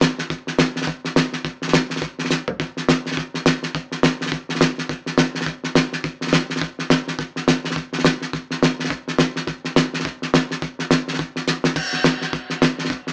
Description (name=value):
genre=rock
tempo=210 BPM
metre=4/4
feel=swing 59% on 8ths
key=none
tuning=none
part: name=cloth-damped thuddy drum kit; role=drums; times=0.0-13.1 s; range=crash cymbal, hi-hat, kick drum, snare drum, toms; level=-21 LUFS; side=equal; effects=none
room=moderate studio ambience, RT60 0.5 s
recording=band playing live in one room, small speaker sound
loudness=-21 LUFS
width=mono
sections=0.0-11.8 A section; 11.8-13.1 B section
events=drum fill 2.3, 11.5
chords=none